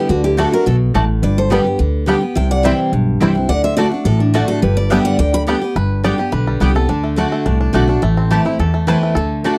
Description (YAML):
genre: bluegrass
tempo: 212 BPM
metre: 4/4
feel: straight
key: G major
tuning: A4 = 438 Hz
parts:
  - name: picked steel-string acoustic guitar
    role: melody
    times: 0.0-5.4 s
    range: D4 to B5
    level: -23 LUFS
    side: equal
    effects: none
  - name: lap resonator guitar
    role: second line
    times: 0.0-5.5 s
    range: B3 to G5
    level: -26 LUFS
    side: equal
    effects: none
  - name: picked steel-string acoustic guitar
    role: accompaniment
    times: 0.0-9.6 s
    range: E2 to G4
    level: -20 LUFS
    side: equal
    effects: none
  - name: upright bass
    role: bass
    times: 0.1-9.5 s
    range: G1 to E2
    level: -20 LUFS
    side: equal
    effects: none
  - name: bluegrass banjo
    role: melody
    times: 0.4-9.6 s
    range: G3 to D5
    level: -25 LUFS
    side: equal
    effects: none
  - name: mandolin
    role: stabs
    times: 0.4-9.5 s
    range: A3 to A5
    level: -24 LUFS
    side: equal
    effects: none
room: little or no reverb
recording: dry, close 1970s-style studio recording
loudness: -16 LUFS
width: mono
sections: 0.0-5.8 A section; 5.8-9.6 B section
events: five-string banjo solo 5.8-9.6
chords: 0.1 D; 1.2 G; 2.4 C; 3.5 D; 4.6 G; 6.9 D; 8.0 Am